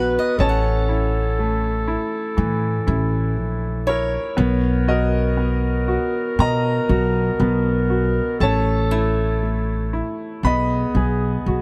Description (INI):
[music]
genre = acoustic folk-pop ballad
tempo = 60 BPM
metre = 4/4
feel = straight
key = unclear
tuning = A4 = 440 Hz
[part]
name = bright upright piano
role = melody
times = 0.0-11.6 s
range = E3 to B5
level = -25 LUFS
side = equal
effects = none
[part]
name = mellow clarinet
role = second line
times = 0.0-11.6 s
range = G#4 to B4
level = -28 LUFS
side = equal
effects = none
[part]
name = picked swing-style acoustic guitar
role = arpeggios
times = 0.0-10.9 s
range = A3 to F#5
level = -33 LUFS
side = equal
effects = none
[part]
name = upright bass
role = bass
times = 0.0-11.6 s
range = A1 to B2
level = -23 LUFS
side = equal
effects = none
[sound]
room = little or no reverb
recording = none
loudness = -20 LUFS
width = mono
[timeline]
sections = 0.0-11.6 A section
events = none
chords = 0.4 A; 4.4 Bmaj7; 8.4 A; 10.4 B6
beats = | 0.38 1.38 2.37 3.37 | 4.37 5.38 6.38 7.39 | 8.40 9.42 10.43 11.46